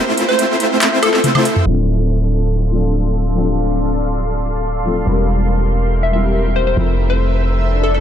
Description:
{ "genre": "future bass", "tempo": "141 BPM", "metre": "4/4", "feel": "half-time", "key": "D minor", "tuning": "A4 = 440 Hz", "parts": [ { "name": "shimmering ambient pad", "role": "sustained chords", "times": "0.0-8.0 s", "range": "A4 to C6", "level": "-24 LUFS", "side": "equal", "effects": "chorus, built-in reverb" }, { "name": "supersaw chords", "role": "riff", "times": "0.0-1.4 s", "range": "A3 to C5", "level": "-19 LUFS", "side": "right 1 dB", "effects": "low-pass filter, analog delay" }, { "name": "big-room dance drum kit", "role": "drums", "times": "0.2-1.8 s", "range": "crash cymbal, handclaps, hi-hat, toms, woodblock", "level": "-19 LUFS", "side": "equal", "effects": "overdrive" }, { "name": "glassy wavetable pluck", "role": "melody", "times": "0.3-1.2, 6.0-8.0 s", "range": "A4 to E5", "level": "-21 LUFS", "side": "left 2 dB", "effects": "chorus, analog delay" }, { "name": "felt-muted upright piano", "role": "accompaniment", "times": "1.6-8.0 s", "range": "F3 to Bb4", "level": "-20 LUFS", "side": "left 2 dB", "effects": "ensemble chorus, analog delay" }, { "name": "long sustained 808-style bass", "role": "bass", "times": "1.7-8.0 s", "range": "D1 to F1", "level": "-16 LUFS", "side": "equal", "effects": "none" }, { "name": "swell", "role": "sound effects", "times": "7.7-8.0 s", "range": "none", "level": "-20 LUFS", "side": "left 4 dB", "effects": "none" } ], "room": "moderate huge ambient reverb, RT60 5.8 s", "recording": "dreamy mix soaked in reverb, low-pass filter", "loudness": "-14 LUFS", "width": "side -9 dB against mid", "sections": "0.0-1.7 A section; 1.7-8.0 B section", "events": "break 0.0-1.7; drop 0.0-1.7; drum fill 1.2-1.7; filter sweep on ambient pad 1.7-8.0; filter sweep 1.7-8.0; swell 7.7", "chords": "0.0 Fmaj7; 1.7 Dm7; 5.1 C7/E; 6.8 Fmaj7" }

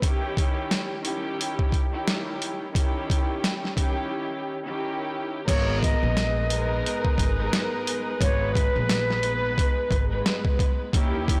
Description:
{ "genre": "hip hop, boom-bap hip-hop", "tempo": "88 BPM", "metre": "4/4", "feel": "swing 59% on 16ths", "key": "G# harmonic minor", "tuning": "A4 = 440 Hz", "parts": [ { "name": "dark studio string section", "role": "accompaniment", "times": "0.0-11.4 s", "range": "G#2 to B4", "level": "-32 LUFS", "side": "equal", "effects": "cassette tape, high-pass filter, low-pass filter" }, { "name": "boom bap sampler-style drum kit", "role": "drums", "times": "0.0-11.4 s", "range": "crash cymbal, hi-hat, kick drum, snare drum", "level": "-27 LUFS", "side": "equal", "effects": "none" }, { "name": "silver concert flute", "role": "melody", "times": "5.5-10.4 s", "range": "B4 to D#5", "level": "-31 LUFS", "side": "equal", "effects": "high-pass filter, low-pass filter" }, { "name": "clear saxophone section", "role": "stabs", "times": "5.5-10.5 s", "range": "D#4 to B4", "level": "-36 LUFS", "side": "equal", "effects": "high-pass filter, low-pass filter, tape echo" }, { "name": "upright bass", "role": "bass", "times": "5.5-11.4 s", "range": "G#1 to D#2", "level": "-30 LUFS", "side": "equal", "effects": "tube saturation" } ], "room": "light reverb, studio ambience", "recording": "blown-out, overdriven recording, overdrive", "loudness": "-25 LUFS", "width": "mono", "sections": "0.0-5.5 A section; 5.5-11.4 B section", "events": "break 4.1-5.5", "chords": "0.0 D#7b9; 5.5 G#madd9" }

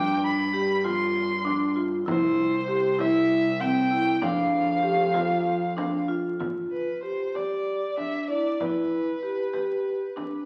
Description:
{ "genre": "contemporary instrumental, chamber music in an uneven meter", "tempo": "193 BPM (eighths)", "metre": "7/8", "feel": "straight", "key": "G mixolydian", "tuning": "A4 = 440 Hz", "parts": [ { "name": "rich violin", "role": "melody", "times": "0.0-10.5 s", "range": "B4 to C6", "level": "-30 LUFS", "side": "equal", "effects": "none" }, { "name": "vibraphone with medium hard mallets", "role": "arpeggios", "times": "0.0-10.4 s", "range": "C4 to G4", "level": "-28 LUFS", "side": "equal", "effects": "none" }, { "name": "warm double bass", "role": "bass", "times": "0.0-6.4 s", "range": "C2 to G2", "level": "-36 LUFS", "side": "equal", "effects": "none" }, { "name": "frame drum", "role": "percussion", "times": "0.2-10.5 s", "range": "none", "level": "-40 LUFS", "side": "equal", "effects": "none" } ], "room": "wet recital hall reverb, RT60 1.5 s", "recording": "very old 78 rpm record, vinyl crackle", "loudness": "-25 LUFS", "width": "mono", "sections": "0.0-6.4 A section; 6.4-10.5 B section", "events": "none", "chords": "0.0 G7sus4; 2.1 C; 4.2 Dm/F; 6.4 G5; 8.6 G6" }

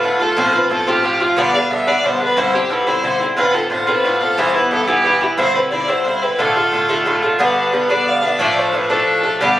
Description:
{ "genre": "celtic folk, Celtic jig", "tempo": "119 BPM (dotted quarters)", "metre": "6/8", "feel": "straight", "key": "D dorian", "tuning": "A4 = 440 Hz", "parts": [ { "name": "dark fiddle", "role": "melody", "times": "0.0-9.6 s", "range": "E4 to F5", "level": "-18 LUFS", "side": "equal", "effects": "none" }, { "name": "Irish bouzouki", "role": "accompaniment", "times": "0.0-9.6 s", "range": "G2 to F4", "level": "-15 LUFS", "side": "equal", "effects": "none" } ], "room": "moderate small room reverb, RT60 0.5 s", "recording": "recorded on a phone in the room, club reverb", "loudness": "-14 LUFS", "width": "side -14 dB against mid", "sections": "0.0-7.4 A section; 7.4-9.6 B section", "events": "none", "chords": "0.4 F; 1.4 G; 2.4 Cadd9; 3.4 Dm7; 4.4 Em; 5.4 Cadd9; 6.4 Dm; 7.4 G; 8.4 Dm" }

